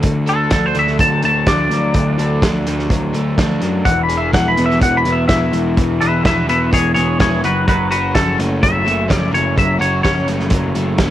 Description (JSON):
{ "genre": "indie rock", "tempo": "126 BPM", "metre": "4/4", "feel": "straight", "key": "unclear", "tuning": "A4 = 441 Hz", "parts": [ { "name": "crunchy overdriven guitar", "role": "riff", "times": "0.0-11.1 s", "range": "D3 to A4", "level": "-20 LUFS", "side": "equal", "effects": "spring reverb" }, { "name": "fuzz picked electric bass", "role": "bass", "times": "0.0-11.1 s", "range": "E1 to F#2", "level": "-19 LUFS", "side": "equal", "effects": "overdrive" }, { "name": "loose indie drum kit", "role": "drums", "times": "0.0-11.1 s", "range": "hi-hat, kick drum, snare drum", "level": "-18 LUFS", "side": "equal", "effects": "cassette tape" }, { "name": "twangy electric guitar", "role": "melody", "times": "0.3-10.3 s", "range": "F#4 to B5", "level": "-18 LUFS", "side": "left 1 dB", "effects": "wide subtle chorus, cassette tape, tape echo" } ], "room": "little or no reverb", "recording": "home recording on cassette", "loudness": "-13 LUFS", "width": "side -12 dB against mid", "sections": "0.0-11.1 A section", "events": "clean electric guitar solo 0.0-11.1", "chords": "0.0 D; 3.9 E; 7.4 F#m", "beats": "| 0.04 0.52 0.99 1.47 | 1.95 2.43 2.91 3.38 | 3.86 4.34 4.81 5.29 | 5.77 6.24 6.72 7.19 | 7.67 8.14 8.62 9.09 | 9.56 10.04 10.51 10.98" }